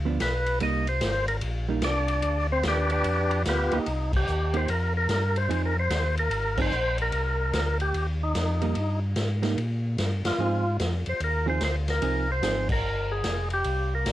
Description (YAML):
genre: soul jazz organ trio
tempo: 147 BPM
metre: 4/4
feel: swing 65% on 8ths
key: C minor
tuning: A4 = 439 Hz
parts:
  - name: mellow tonewheel organ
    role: bass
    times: 0.0-14.1 s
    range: F1 to Bb2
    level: -27 LUFS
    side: equal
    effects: overdrive, chorus vibrato, slow rotary speaker, transformer saturation
  - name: hollow-body jazz guitar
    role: accompaniment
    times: 0.1-12.7 s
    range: F3 to Ab4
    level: -30 LUFS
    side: right 6 dB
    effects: cassette tape
  - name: percussive tonewheel organ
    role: melody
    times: 0.2-14.1 s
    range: B3 to Eb5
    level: -27 LUFS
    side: equal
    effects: slow rotary speaker, cassette tape
  - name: swinging big-band drum kit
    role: drums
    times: 0.2-14.1 s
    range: crash cymbal, hi-hat, kick drum, ride cymbal, snare drum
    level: -32 LUFS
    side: equal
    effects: cassette tape
room: moderate studio reverb, RT60 0.6 s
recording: home recording on cassette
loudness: -24 LUFS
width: side -14 dB against mid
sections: 0.0-3.9 A section; 3.9-14.1 B section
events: tonewheel organ solo 0.0-3.9; band accent 4.1, 6.5, 10.2, 12.6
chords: 0.0 G7 (rootless); 0.6 Cm7; 2.2 G7; 3.9 Cm7; 5.5 Fm7; 7.1 Cm7; 10.4 Fm7